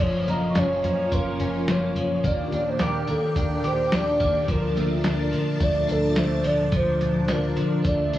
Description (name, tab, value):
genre	dream pop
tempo	107 BPM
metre	4/4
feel	straight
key	unclear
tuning	A4 = 440 Hz
part	warbly nostalgic lead	melody	0.0-8.2 s	A4 to Eb5	-26 LUFS	equal	chorus, digital delay
part	phased string machine	sustained chords	0.0-8.2 s	Bb2 to A5	-30 LUFS	equal	ensemble chorus, phaser
part	clean electric guitar	arpeggios	0.0-8.2 s	F3 to G4	-27 LUFS	equal	ensemble chorus, digital delay
part	vintage muted picked electric bass	bass	0.0-8.2 s	Gb1 to Eb3	-27 LUFS	left 1 dB	none
part	lo-fi sampler-style drum kit	drums	0.0-8.2 s	hi-hat, kick drum, snare drum	-27 LUFS	equal	none
part	celesta	texture	0.3-2.0 s	Bb5 to Db6	-37 LUFS	right 1 dB	digital delay
room	light reverb, digital ambience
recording	worn, warbling old tape, cassette tape, warbly pitch drift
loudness	-21 LUFS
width	side -14 dB against mid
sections	0.0-8.2 A section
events	none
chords	0.0 Gbmaj7; 2.2 Ebmaj7; 4.5 Bbmaj7/D